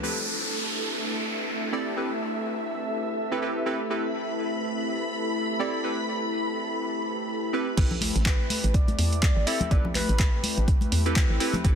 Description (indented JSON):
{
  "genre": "deep house",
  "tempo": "124 BPM",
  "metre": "4/4",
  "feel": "swing 57% on 16ths",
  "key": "A minor",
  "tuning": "A4 = 440 Hz",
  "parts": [
    { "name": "warbly tape-like pad", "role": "sustained chords", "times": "0.0-11.8 s", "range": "A3 to B4", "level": "-32 LUFS", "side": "left 1 dB", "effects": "chorus, built-in reverb, sidechain pumping" },
    { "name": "warm analog keys", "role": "stabs", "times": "0.0-11.8 s", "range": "C4 to D5", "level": "-31 LUFS", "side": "right 2 dB", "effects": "chorus, sidechain pumping, ping-pong delay" },
    { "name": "downlifter", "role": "sound effects", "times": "0.0-3.9 s", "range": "none", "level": "-32 LUFS", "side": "equal", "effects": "none" },
    { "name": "ethereal airy pad", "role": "texture", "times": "0.0-7.8 s", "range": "D4 to B5", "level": "-33 LUFS", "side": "right 1 dB", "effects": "ensemble chorus, built-in reverb, sidechain pumping" },
    { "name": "string machine, violins", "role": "texture", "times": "3.9-7.8 s", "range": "B5", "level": "-35 LUFS", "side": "equal", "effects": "ensemble chorus, sidechain pumping" },
    { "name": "hollow knocking FM bass", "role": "bass", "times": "7.8-11.8 s", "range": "A1 to E2", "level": "-26 LUFS", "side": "equal", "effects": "sidechain pumping" },
    { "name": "electronic kick drum", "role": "drums", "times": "7.8-11.8 s", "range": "none", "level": "-23 LUFS", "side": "equal", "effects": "none" },
    { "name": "punchy analog drum machine", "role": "drums", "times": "7.8-11.8 s", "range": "crash cymbal, handclaps, hi-hat", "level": "-30 LUFS", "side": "right 1 dB", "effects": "none" },
    { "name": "congas", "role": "percussion", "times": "7.9-11.6 s", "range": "none", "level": "-33 LUFS", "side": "left 3 dB", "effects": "none" },
    { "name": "mellow horn-like synth lead", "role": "melody", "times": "8.3-10.6 s", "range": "B4 to E5", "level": "-34 LUFS", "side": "equal", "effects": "lush chorus, dub echo" }
  ],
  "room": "light reverb, digital ambience",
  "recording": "dense, heavily limited modern master",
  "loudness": "-24 LUFS",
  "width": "side -8 dB against mid",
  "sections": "0.0-7.8 A section; 7.8-11.8 B section",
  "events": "filter sweep on ambient pad 0.0-7.8; drop 7.8-11.8",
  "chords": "0.0 Am9",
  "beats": "| 0.03 0.52 1.00 1.49 | 1.97 2.45 2.94 3.42 | 3.90 4.39 4.87 5.36 | 5.84 6.32 6.81 7.29 | 7.78 8.26 8.74 9.23 | 9.71 10.20 10.68 11.16 | 11.65"
}